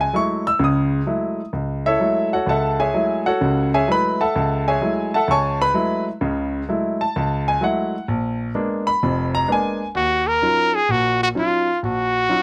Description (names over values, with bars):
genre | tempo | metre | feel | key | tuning
jazz | 128 BPM | 4/4 | swing 68% on 8ths | F# dorian | A4 = 440 Hz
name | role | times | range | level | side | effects
clear grand piano | accompaniment | 0.0-12.4 s | E#1 to E6 | -21 LUFS | equal | none
clear trumpet | melody | 10.0-12.4 s | F4 to Bb4 | -20 LUFS | equal | none
room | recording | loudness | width
light reverb | close, detailed microphones | -20 LUFS | mono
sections
0.0-9.9 A section; 9.9-12.4 B section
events
none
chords
0.0 F#m9; 8.1 A#7b9; 9.9 Ebm9